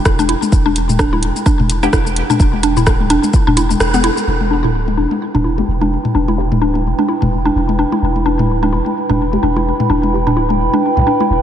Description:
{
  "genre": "minimal techno",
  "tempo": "128 BPM",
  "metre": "4/4",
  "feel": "swing 58% on 16ths",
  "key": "E minor",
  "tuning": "A4 = 440 Hz",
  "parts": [
    { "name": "warbly tape-like pad", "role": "texture", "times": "0.0-11.4 s", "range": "E4 to B5", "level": "-22 LUFS", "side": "right 2 dB", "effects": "chorus, built-in reverb, sidechain pumping" },
    { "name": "punchy sub bass", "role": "bass", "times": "0.1-11.4 s", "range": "D1 to B1", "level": "-18 LUFS", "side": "equal", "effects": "sidechain pumping" },
    { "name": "electronic kick drum", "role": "drums", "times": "0.1-3.4 s", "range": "none", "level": "-13 LUFS", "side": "equal", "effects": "none" },
    { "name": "house drum kit", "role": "drums", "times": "0.1-4.3 s", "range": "hi-hat, rim click, shaker", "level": "-21 LUFS", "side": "equal", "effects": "none" },
    { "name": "mallet-like synth pluck", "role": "riff", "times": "0.2-11.2 s", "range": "B3 to E4", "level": "-17 LUFS", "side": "equal", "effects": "chorus, sidechain pumping, ping-pong delay" },
    { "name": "electronic toms", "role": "percussion", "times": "0.2-11.3 s", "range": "none", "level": "-20 LUFS", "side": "left 4 dB", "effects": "tape echo" },
    { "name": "filtered dub chord stab", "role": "stabs", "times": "1.8-1.9, 5.6-6.5, 9.3-10.2 s", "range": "B3 to G4", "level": "-29 LUFS", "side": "right 1 dB", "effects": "phaser, lush chorus, tape echo" }
  ],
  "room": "moderate cathedral reverb, RT60 4.8 s",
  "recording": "dreamy mix soaked in reverb, nothing above 10.7 kHz",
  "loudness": "-12 LUFS",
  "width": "side -10 dB against mid",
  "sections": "0.0-4.3 A section; 4.3-11.4 B section",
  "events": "drop 0.0-4.3; kick drops out 3.8-4.3; band accent 3.8",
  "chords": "0.0 Em"
}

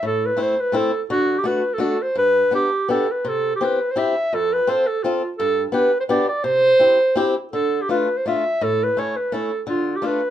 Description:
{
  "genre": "alpine folk, alpine dance band",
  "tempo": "168 BPM",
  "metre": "3/4",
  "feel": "swing 54% on 8ths",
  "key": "C major",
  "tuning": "A4 = 439 Hz",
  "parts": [
    { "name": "warm clarinet", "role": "melody", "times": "0.0-10.3 s", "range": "F4 to E5", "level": "-19 LUFS", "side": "right 1 dB", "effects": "none" },
    { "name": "fingerpicked swing-style acoustic guitar", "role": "accompaniment", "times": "0.0-10.2 s", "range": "F2 to A4", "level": "-23 LUFS", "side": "left 3 dB", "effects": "none" }
  ],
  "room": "moderate small room reverb, RT60 0.6 s",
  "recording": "minimal, uncompressed stereo recording",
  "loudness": "-17 LUFS",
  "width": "side -11 dB against mid",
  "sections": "0.0-10.3 A section",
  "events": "none",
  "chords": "0.0 Am; 1.1 D; 2.2 G; 3.2 C; 4.3 F; 5.4 G; 6.4 C; 7.5 Dm; 8.6 A; 9.7 Dm"
}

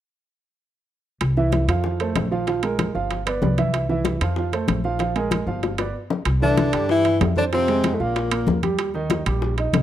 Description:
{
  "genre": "Afro-Cuban jazz",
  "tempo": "190 BPM",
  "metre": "4/4",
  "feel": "straight",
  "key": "unclear",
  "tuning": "A4 = 440 Hz",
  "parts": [
    { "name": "upright bass", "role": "bass", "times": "1.2-9.8 s", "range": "G1 to G2", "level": "-24 LUFS", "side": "equal", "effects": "none" },
    { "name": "bongos", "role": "percussion", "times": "1.2-9.8 s", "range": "none", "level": "-29 LUFS", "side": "left 6 dB", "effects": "none" },
    { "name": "congas", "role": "percussion", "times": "1.2-9.8 s", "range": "none", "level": "-27 LUFS", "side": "left 3 dB", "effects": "none" },
    { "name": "timbales", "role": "percussion", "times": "1.2-9.8 s", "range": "none", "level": "-29 LUFS", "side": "right 9 dB", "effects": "none" },
    { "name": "clear grand piano", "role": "accompaniment", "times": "1.4-9.8 s", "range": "Eb3 to F5", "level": "-24 LUFS", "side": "right 4 dB", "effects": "none" },
    { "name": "breathy tenor saxophone", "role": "melody", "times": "6.4-8.6 s", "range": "A3 to E4", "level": "-22 LUFS", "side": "equal", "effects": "none" },
    { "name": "warm baritone saxophone", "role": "second line", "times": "6.4-8.6 s", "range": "A2 to E3", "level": "-27 LUFS", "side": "left 12 dB", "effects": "none" }
  ],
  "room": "studio reverb",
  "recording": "dry, close 1970s-style studio recording",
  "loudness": "-19 LUFS",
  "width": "side -11 dB against mid",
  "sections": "1.2-6.3 A section; 6.3-9.8 B section",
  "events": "drum fill 5.6-6.3; stop 5.9-6.3",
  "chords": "1.2 C; 1.8 F; 2.5 Bb5; 3.1 G7; 3.7 C; 4.4 F; 5.0 Bb5; 5.6 G7; 6.3 C; 7.5 Fm; 8.2 Bb5; 8.8 Eb"
}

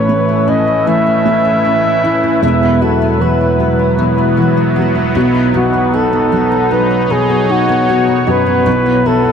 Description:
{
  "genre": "pop ballad",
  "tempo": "77 BPM",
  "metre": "4/4",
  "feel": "straight",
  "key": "unclear",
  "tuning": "A4 = 441 Hz",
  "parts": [
    { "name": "breathy flugelhorn", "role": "melody", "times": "0.0-9.3 s", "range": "F#4 to E5", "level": "-15 LUFS", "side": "equal", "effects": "diffuse ambient delay" },
    { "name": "felt-muted upright piano", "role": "accompaniment", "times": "0.0-9.3 s", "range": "E1 to E4", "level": "-14 LUFS", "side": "right 1 dB", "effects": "none" },
    { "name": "sweeping resonant pad", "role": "sustained chords", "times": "0.0-9.3 s", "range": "B2 to C#5", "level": "-17 LUFS", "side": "left 1 dB", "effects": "chorus" },
    { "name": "fingerpicked steel-string acoustic guitar", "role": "arpeggios", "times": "0.0-9.3 s", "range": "B2 to B4", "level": "-20 LUFS", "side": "left 4 dB", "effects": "analog chorus, diffuse ambient delay" }
  ],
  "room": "wet huge ambient reverb, RT60 7.3 s",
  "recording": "dreamy mix soaked in reverb",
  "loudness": "-10 LUFS",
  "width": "side -7 dB against mid",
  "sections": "0.0-9.3 A section",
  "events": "none",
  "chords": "0.0 Aadd9; 2.4 Esus2; 5.2 B; 8.7 Esus2/B"
}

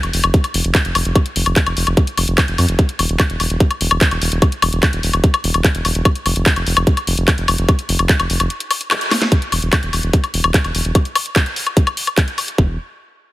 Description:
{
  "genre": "psychedelic trance",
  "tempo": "147 BPM",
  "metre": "4/4",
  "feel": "straight",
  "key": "unclear",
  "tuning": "A4 = 441 Hz",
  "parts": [
    { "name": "round analog bass", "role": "bass", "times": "0.0-12.8 s", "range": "E1 to F2", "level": "-18 LUFS", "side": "equal", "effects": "tube saturation" },
    { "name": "drum and bass drum kit", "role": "drums", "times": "0.0-12.6 s", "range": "handclaps, hi-hat, snare drum, woodblock", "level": "-18 LUFS", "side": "left 2 dB", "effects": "overdrive" },
    { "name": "electronic kick drum", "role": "drums", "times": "0.3-12.7 s", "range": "none", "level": "-13 LUFS", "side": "equal", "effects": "none" }
  ],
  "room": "light reverb",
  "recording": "heavily compressed radio sound",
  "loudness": "-14 LUFS",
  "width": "side -17 dB against mid",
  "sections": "0.0-9.3 A section; 9.3-12.6 B section",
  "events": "drop 0.0-9.3; break 8.5-9.3; band accent 8.9; drum fill 9.1",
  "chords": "none"
}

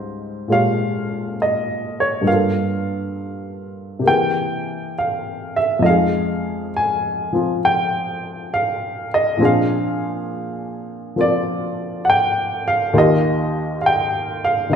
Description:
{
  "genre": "jazz ballad",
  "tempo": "68 BPM",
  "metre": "4/4",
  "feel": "swing 66% on 8ths",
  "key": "unclear",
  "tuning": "A4 = 440 Hz",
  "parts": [
    { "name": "warm upright piano", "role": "solo", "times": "0.0-14.8 s", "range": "Db2 to Ab5", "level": "-18 LUFS", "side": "equal", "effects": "none" }
  ],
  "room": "wet recital hall reverb, RT60 1.4 s",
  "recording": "recorded in a church or concert hall",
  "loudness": "-17 LUFS",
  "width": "side -7 dB against mid",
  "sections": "0.0-14.8 A section",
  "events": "none",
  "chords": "0.0 Dbmaj9#11; 2.3 Gm9; 4.1 C7b13; 5.8 Fm9; 9.4 Bb7; 12.9 Ebadd9"
}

